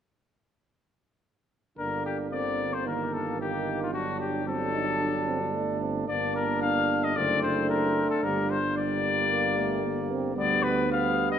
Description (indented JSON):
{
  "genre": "classical, brass quintet",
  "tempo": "112 BPM",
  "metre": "4/4",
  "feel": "straight",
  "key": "G minor",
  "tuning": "A4 = 444 Hz",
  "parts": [
    { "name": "clear trumpet", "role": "melody", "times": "1.8-11.4 s", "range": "F4 to F5", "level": "-28 LUFS", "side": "left 5 dB", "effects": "none" },
    { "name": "warm flugelhorn", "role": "second line", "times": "1.8-11.4 s", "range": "Bb3 to D4", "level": "-34 LUFS", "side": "right 6 dB", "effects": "none" },
    { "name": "mellow French horn", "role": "accompaniment", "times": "1.8-11.4 s", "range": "D3 to Bb3", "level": "-34 LUFS", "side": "left 2 dB", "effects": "none" },
    { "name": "warm trombone", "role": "accompaniment", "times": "1.8-11.4 s", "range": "A3 to Eb4", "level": "-33 LUFS", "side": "right 2 dB", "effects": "none" },
    { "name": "mellow tuba", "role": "bass", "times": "1.8-11.4 s", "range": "F#1 to D2", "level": "-32 LUFS", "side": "right 3 dB", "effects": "none" }
  ],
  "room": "wet recital hall reverb, RT60 1.9 s",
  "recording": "none",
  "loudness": "-25 LUFS",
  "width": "side -8 dB against mid",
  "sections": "1.8-11.4 A section",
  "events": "none",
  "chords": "1.8 Gm; 2.9 Eb/G; 3.9 D/G; 6.1 Gm; 7.2 D7/F#; 8.2 Gm; 10.4 G/D"
}